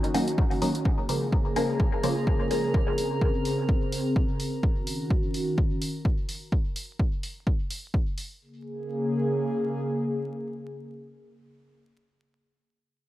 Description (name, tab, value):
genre	dub techno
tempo	127 BPM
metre	4/4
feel	swing 56% on 16ths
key	Bb minor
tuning	A4 = 440 Hz
part	airy breathy pad	sustained chords	0.0-11.5 s	Db3 to Ab4	-29 LUFS	equal	chorus, sidechain pumping
part	electronic hi-hat	drums	0.0-8.3 s	none	-37 LUFS	right 1 dB	none
part	filtered dub chord stab	stabs	0.1-2.7 s	Db3 to Eb4	-29 LUFS	left 1 dB	phaser, sidechain pumping, dub echo
part	electronic kick drum	drums	0.4-8.0 s	none	-25 LUFS	equal	none
part	drifting glass-harmonics texture	texture	1.3-4.6 s	Bb4	-37 LUFS	right 2 dB	chorus, built-in reverb, sidechain pumping
room	light reverb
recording	vinyl crackle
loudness	-24 LUFS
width	side -15 dB against mid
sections	0.9-8.4 A section; 8.4-12.2 B section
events	filter sweep on analog synth pad 0.9-6.5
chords	0.0 Ebm7; 0.9 Bbm7; 4.6 Ebm7; 8.4 Bbm7